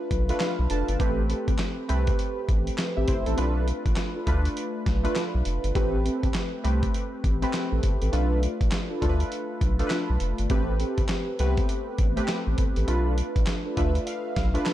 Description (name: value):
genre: R&B, new jack swing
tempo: 101 BPM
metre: 4/4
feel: swing 62% on 16ths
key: A minor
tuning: A4 = 440 Hz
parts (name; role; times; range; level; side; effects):
- warm analog keys; accompaniment; 0.0-14.7 s; A3 to A5; -30 LUFS; equal; chorus, phaser
- round analog bass; bass; 0.1-14.6 s; F1 to D2; -25 LUFS; equal; none
- dusty soul sampler-style drum kit; drums; 0.1-14.7 s; handclaps, hi-hat, kick drum, snare drum; -27 LUFS; equal; none
- mellow synth brass; stabs; 0.3-14.7 s; C4 to B4; -33 LUFS; right 2 dB; chorus, tape echo
room: little or no reverb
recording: dark, warm production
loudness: -23 LUFS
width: side -13 dB against mid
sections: 0.0-14.7 A section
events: synth keys fill 0.1-1.0, 13.5-14.7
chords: 0.0 Bm7b5; 1.0 Am9; 3.4 Bm7b5; 5.8 Am9; 8.1 Bm7b5; 10.5 Am9; 12.9 Bm7b5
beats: 0.41 | 1.00 1.59 2.19 2.78 | 3.38 3.97 4.56 5.16 | 5.75 6.35 6.94 7.53 | 8.13 8.72 9.32 9.91 | 10.50 11.10 11.69 12.29 | 12.88 13.47 14.07 14.66